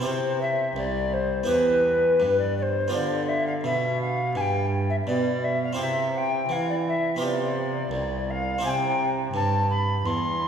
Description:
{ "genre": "classical, baroque-style sonata movement with continuo", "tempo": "84 BPM", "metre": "4/4", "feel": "rubato", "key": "C major", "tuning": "A4 = 444 Hz", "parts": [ { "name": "mellow alto recorder", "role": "melody", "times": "0.0-10.5 s", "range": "B4 to C6", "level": "-24 LUFS", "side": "left 2 dB", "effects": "none" }, { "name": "harpsichord", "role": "accompaniment", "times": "0.0-10.5 s", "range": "C2 to G4", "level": "-30 LUFS", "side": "right 3 dB", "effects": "none" }, { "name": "warm cello", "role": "bass", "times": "0.0-10.5 s", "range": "C2 to E3", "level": "-28 LUFS", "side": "right 2 dB", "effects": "none" } ], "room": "wet concert hall reverb, RT60 2.2 s", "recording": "recorded in a church or concert hall", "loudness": "-22 LUFS", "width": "side -7 dB against mid", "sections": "0.1-10.5 A section", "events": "none", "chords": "0.1 C; 1.5 Em; 2.9 G7; 5.8 C; 7.2 G7/C; 8.6 C" }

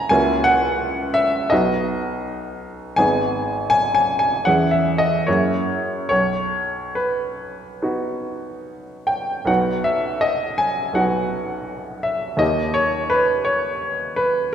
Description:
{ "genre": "classical, romantic character piece for solo piano", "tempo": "69-86 BPM", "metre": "4/4", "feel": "rubato", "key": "B major", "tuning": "A4 = 442 Hz", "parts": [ { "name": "clear baby grand piano", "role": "solo", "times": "0.0-14.5 s", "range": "G#1 to A#5", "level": "-18 LUFS", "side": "equal", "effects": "none" } ], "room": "wet scoring stage reverb, RT60 2.0 s", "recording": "recorded in a church or concert hall", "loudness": "-18 LUFS", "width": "side -9 dB against mid", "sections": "0.0-9.5 A section; 9.5-14.5 A section", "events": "none", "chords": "0.1 F#7/C#; 1.5 B; 3.0 G#m; 4.5 C#m/E; 5.3 F#9; 6.1 B; 12.4 D#7" }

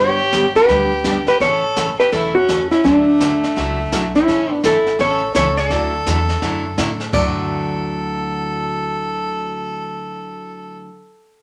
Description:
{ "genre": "country, western swing", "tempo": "168 BPM", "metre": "4/4", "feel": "swing 63% on 8ths", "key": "D major", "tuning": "A4 = 440 Hz", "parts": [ { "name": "hollow-body jazz guitar", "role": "melody", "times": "0.0-10.9 s", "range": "D4 to D5", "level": "-18 LUFS", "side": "equal", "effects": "none" }, { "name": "clear fiddle", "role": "second line", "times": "0.0-10.8 s", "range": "A3 to A4", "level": "-26 LUFS", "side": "equal", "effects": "none" }, { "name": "picked steel-string acoustic guitar", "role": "accompaniment", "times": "0.0-10.9 s", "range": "C#3 to A4", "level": "-27 LUFS", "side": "equal", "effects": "none" }, { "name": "upright bass", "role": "bass", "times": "0.0-10.8 s", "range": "E1 to A2", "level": "-29 LUFS", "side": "equal", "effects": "none" }, { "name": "jazz brush drum kit", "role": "drums", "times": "0.3-7.4 s", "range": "brushed snare drum, hi-hat, kick drum, snare drum, splash cymbal, toms", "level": "-28 LUFS", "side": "equal", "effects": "none" } ], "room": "wet studio reverb, RT60 0.6 s", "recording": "none", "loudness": "-18 LUFS", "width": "mono", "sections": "0.0-4.3 A section; 4.3-7.1 B section; 7.1-10.0 C section", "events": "none", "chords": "0.0 G; 1.4 A; 2.8 Dadd9; 4.3 A; 5.7 Dadd9" }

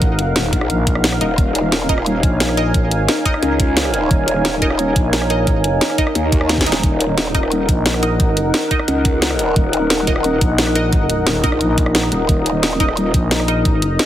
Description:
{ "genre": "dark technical drum and bass", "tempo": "176 BPM", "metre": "4/4", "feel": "straight", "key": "Eb minor", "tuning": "A4 = 440 Hz", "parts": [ { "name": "dark analog pad", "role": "sustained chords", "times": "0.0-14.1 s", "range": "Eb4 to Bb5", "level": "-22 LUFS", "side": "left 1 dB", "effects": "chorus, sidechain pumping" }, { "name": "filtered dub chord stab", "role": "stabs", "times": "0.0-14.1 s", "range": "Eb4 to Eb5", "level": "-25 LUFS", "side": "right 1 dB", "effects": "phaser, dub echo" }, { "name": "growling FM bass", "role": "bass", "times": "0.0-14.0 s", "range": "Eb1 to Bb1", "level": "-19 LUFS", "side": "equal", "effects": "none" }, { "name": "drum and bass drum kit", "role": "drums", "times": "0.0-14.1 s", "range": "hi-hat, rim click, snare drum", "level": "-19 LUFS", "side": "equal", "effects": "none" }, { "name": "electronic kick drum", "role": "drums", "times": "0.0-13.7 s", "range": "none", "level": "-17 LUFS", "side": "equal", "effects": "none" }, { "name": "warbly tape-like pad", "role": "texture", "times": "0.0-14.1 s", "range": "Eb4 to Eb5", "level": "-23 LUFS", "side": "equal", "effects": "chorus, built-in reverb, sidechain pumping" }, { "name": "growl bass", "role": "bass", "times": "0.5-13.1 s", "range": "Eb1 to Eb2", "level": "-19 LUFS", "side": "equal", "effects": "chorus, overdrive" } ], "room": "light reverb, digital ambience", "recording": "heavily compressed radio sound, multiband compression", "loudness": "-14 LUFS", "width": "side -12 dB against mid", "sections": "0.0-14.1 A section", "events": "drum fill 6.5-6.8", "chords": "0.0 Ebm" }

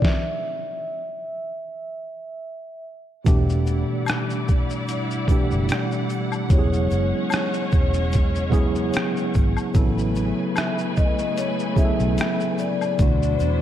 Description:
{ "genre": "lo-fi hip hop", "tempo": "74 BPM", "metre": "4/4", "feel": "swing 55% on 16ths", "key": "unclear", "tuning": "A4 = 436 Hz", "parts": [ { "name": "vibraphone with soft mallets", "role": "melody", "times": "0.0-13.6 s", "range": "C#5 to E5", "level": "-29 LUFS", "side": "left 3 dB", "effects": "low-pass filter, tape echo" }, { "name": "tine electric piano", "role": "accompaniment", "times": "0.0-13.6 s", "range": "B2 to A4", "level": "-24 LUFS", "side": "right 1 dB", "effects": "overdrive, fast stereo tremolo, cassette tape, low-pass filter" }, { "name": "boom bap sampler-style drum kit", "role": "drums", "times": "0.0-13.6 s", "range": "hi-hat, kick drum, rim click, shaker, snare drum", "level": "-22 LUFS", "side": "equal", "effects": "none" }, { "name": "clear studio string section", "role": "sustained chords", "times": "3.3-13.6 s", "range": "C#3 to G#5", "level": "-29 LUFS", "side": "left 1 dB", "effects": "low-pass filter" }, { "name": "vintage muted fingered electric bass", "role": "bass", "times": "3.3-13.6 s", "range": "E1 to E2", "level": "-24 LUFS", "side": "equal", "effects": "none" }, { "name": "egg shaker and woodblock", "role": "percussion", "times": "3.3-13.6 s", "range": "none", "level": "-34 LUFS", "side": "left 6 dB", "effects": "none" } ], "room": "moderate plate reverb, RT60 2.5 s", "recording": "dreamy mix soaked in reverb, cassette tape", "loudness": "-20 LUFS", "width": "side -11 dB against mid", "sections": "0.0-3.3 A section; 3.3-13.6 A section", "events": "stop 0.0-3.3", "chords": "0.0 N.C.; 3.3 Em9; 6.5 E69; 9.8 Amaj9; 13.0 D9" }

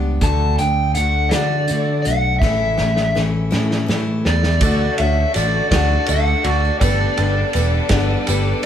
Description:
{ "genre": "folk rock and heartland rock", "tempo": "55 BPM (dotted quarters)", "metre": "6/8", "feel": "straight", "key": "D major", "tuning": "A4 = 440 Hz", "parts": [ { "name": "picked steel-string acoustic guitar", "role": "accompaniment", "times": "0.0-8.7 s", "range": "A2 to A4", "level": "-23 LUFS", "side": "left 4 dB", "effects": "none" }, { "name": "picked electric bass", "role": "bass", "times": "0.0-8.5 s", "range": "E1 to D3", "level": "-19 LUFS", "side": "equal", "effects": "none" }, { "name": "overdriven slide guitar", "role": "melody", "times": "0.2-8.7 s", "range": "D5 to A5", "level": "-20 LUFS", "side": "equal", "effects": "none" }, { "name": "vintage drum kit", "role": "drums", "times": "0.2-8.7 s", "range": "hi-hat, kick drum, ride cymbal, snare drum", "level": "-22 LUFS", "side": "right 1 dB", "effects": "none" }, { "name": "warm upright piano", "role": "accompaniment", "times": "4.6-8.6 s", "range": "F#4 to C#6", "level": "-28 LUFS", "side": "right 4 dB", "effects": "none" }, { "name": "clear studio string section", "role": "sustained chords", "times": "4.6-8.7 s", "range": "G3 to B4", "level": "-29 LUFS", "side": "left 2 dB", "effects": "none" }, { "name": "tambourine", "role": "percussion", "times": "4.6-8.5 s", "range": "none", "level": "-32 LUFS", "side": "right 6 dB", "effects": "none" } ], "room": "moderate stone room reverb, RT60 1.3 s", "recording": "band playing live in one room", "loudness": "-15 LUFS", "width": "side -9 dB against mid", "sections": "0.0-4.6 A section; 4.6-8.7 B section", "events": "drum fill 2.4-4.6", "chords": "0.2 D; 2.4 A; 4.6 D; 6.8 Gadd9" }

